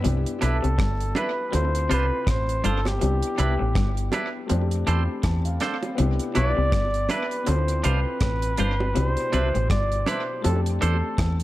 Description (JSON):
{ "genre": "lovers rock reggae", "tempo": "81 BPM", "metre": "4/4", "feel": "swing 58% on 16ths", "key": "C major", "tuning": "A4 = 441 Hz", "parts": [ { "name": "warm grand piano", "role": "accompaniment", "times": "0.0-11.4 s", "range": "B2 to B5", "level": "-32 LUFS", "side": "left 4 dB", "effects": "tape echo" }, { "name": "twangy electric guitar", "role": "riff", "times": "0.0-11.4 s", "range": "G2 to F3", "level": "-32 LUFS", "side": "left 4 dB", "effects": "none" }, { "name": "deep reggae drum kit", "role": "drums", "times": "0.0-11.4 s", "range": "hi-hat, kick drum, rim click", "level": "-29 LUFS", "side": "equal", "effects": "tape echo" }, { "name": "bongos", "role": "percussion", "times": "0.0-10.6 s", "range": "none", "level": "-34 LUFS", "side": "right 3 dB", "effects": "tape echo" }, { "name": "deep dub fingered electric bass", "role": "bass", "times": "0.1-11.4 s", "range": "G1 to F2", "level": "-23 LUFS", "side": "equal", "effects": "none" }, { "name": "breathy flugelhorn", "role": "melody", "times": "0.4-11.4 s", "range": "G4 to D5", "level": "-28 LUFS", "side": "equal", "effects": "tape echo" }, { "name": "twangy electric guitar", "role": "stabs", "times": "0.4-11.0 s", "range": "D4 to C5", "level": "-30 LUFS", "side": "right 4 dB", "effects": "none" } ], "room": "light reverb, studio reverb", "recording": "dark, warm production", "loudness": "-21 LUFS", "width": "side -16 dB against mid", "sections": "0.0-11.4 A section", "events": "grand piano fill 4.5-6.0", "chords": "0.0 Cmaj9; 1.5 Dm7; 3.0 Cmaj9; 4.5 F6; 6.0 Cmaj9; 7.5 Dm7; 9.0 Cmaj9; 10.4 F6" }